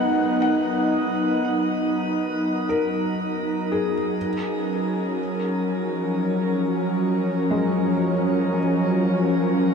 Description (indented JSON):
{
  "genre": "ambient",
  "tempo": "free time",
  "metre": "none",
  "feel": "none",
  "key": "F# major",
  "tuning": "A4 = 440 Hz",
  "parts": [
    { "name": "warm analog pad", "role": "sustained chords", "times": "0.0-9.7 s", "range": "E#3 to A#4", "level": "-21 LUFS", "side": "equal", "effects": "chorus" },
    { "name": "felt-muted upright piano", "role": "arpeggios", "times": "0.0-9.7 s", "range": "G#3 to F#5", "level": "-28 LUFS", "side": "left 2 dB", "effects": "ping-pong delay" }
  ],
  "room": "wet shimmer reverb, RT60 9.3 s",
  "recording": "none",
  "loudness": "-20 LUFS",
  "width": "side -6 dB against mid",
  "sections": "0.0-9.7 A section",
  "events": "none",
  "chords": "0.0 Bmaj7/F#; 4.2 F#maj7"
}